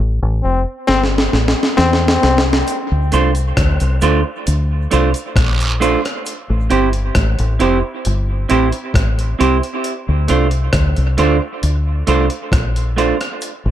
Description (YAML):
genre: dub reggae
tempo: 67 BPM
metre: 4/4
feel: straight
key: D minor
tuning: A4 = 439 Hz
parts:
  - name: deep dub fingered electric bass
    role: bass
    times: 0.0-13.7 s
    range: F1 to E2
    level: -16 LUFS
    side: equal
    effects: none
  - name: brilliant trombone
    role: second line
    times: 0.4-2.4 s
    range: C4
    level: -19 LUFS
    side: left 3 dB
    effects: dub echo
  - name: breakbeat sampler-style drum kit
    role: drums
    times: 0.9-13.6 s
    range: hi-hat, kick drum, rim click, snare drum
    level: -19 LUFS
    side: left 1 dB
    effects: none
  - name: cabasa and guiro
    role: percussion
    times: 2.7-6.5, 13.4-13.6 s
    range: none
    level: -27 LUFS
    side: right 4 dB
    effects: dub echo
  - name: semi-hollow electric guitar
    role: accompaniment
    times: 3.1-13.1 s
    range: A3 to C5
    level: -18 LUFS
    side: right 4 dB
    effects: dub echo
room: light reverb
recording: none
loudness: -13 LUFS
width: side -12 dB against mid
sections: 0.0-13.7 A section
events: break 0.0-2.7; band accent 0.0-2.7; drum fill 0.9-2.7; part muted 6.3-13.4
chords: 0.0 Am7; 2.7 Dm7; 6.3 Am7; 9.8 Dm7